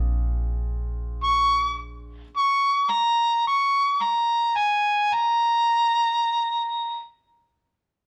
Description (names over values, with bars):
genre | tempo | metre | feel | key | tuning
slow blues | 36 BPM (dotted quarters) | 12/8 | straight | Bb mixolydian | A4 = 440 Hz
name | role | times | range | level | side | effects
clear upright piano | accompaniment | 0.0-2.2 s | C4 to Ab4 | -49 LUFS | equal | none
upright bass | bass | 0.0-2.2 s | Bb1 | -30 LUFS | equal | none
overdriven harmonica | melody | 1.2-7.0 s | Ab5 to Db6 | -22 LUFS | equal | none
room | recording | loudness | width
light reverb | band playing live in one room | -23 LUFS | mono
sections
0.0-5.7 A section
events
none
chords
0.0 Bb9